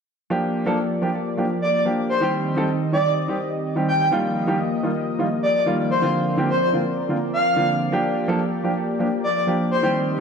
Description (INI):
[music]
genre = EDM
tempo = 126 BPM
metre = 4/4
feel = straight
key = G minor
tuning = A4 = 440 Hz
[part]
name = warm baby grand piano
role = accompaniment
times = 0.3-10.2 s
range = D3 to A4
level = -23 LUFS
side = right 1 dB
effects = ping-pong delay
[part]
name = lush unison pad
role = sustained chords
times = 0.3-10.2 s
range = Eb3 to Eb5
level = -25 LUFS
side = equal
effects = chorus
[part]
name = breathy flute-like synth lead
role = melody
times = 1.6-9.9 s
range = C5 to G5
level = -22 LUFS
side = left 1 dB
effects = lush chorus, ping-pong delay
[sound]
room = wet scoring stage reverb, RT60 1.4 s, studio reverb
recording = none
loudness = -19 LUFS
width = side -6 dB against mid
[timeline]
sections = 0.3-10.2 A section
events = none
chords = 0.3 Gm7; 2.2 Cm; 4.1 Ebadd9; 6.0 Bbadd9; 7.9 Gm7